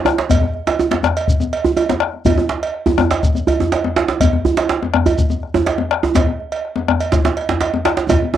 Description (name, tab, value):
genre	west african traditional, West African drum ensemble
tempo	123 BPM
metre	4/4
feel	straight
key	none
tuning	none
part	djembe	percussion	0.0-8.3 s	none	-21 LUFS	left 4 dB	none
part	bombo	percussion	0.1-8.4 s	none	-19 LUFS	left 3 dB	none
part	djembe	percussion	0.1-8.4 s	none	-17 LUFS	right 5 dB	none
part	cowbell	percussion	0.3-8.2 s	none	-23 LUFS	right 5 dB	none
part	shekere	percussion	0.3-8.2 s	none	-26 LUFS	equal	none
room	light reverb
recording	dry, close 1970s-style studio recording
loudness	-14 LUFS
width	side -11 dB against mid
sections	0.0-8.4 A section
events	drum fill 8.1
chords	none